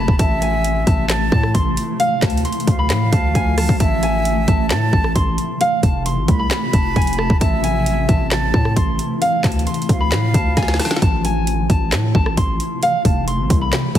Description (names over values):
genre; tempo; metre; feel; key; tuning
hip hop, trap; 133 BPM; 4/4; half-time; A harmonic minor; A4 = 440 Hz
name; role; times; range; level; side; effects
fingerpicked steel-string acoustic guitar; melody; 0.0-14.0 s; F5 to C6; -22 LUFS; left 1 dB; low-pass filter
breathy concert flute; second line; 0.0-11.0 s; E5 to B5; -24 LUFS; right 4 dB; digital delay
granular cloud pad; sustained chords; 0.0-14.0 s; C3 to F4; -24 LUFS; left 1 dB; built-in reverb
distorted 808-style bass; bass; 0.0-14.0 s; F1 to A2; -20 LUFS; equal; distortion
trap drum kit; drums; 0.1-14.0 s; handclaps, hi-hat, kick drum, rim click, snare drum; -18 LUFS; equal; none
room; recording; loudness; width
digital ambience; heavily compressed radio sound, multiband compression; -15 LUFS; side -11 dB against mid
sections
0.0-11.0 A section; 11.0-14.0 A section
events
drum fill 10.6-11.0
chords
0.2 Am; 2.0 Dm; 3.8 Am; 5.6 F; 7.4 Am; 9.2 Dm; 11.0 Am; 12.8 F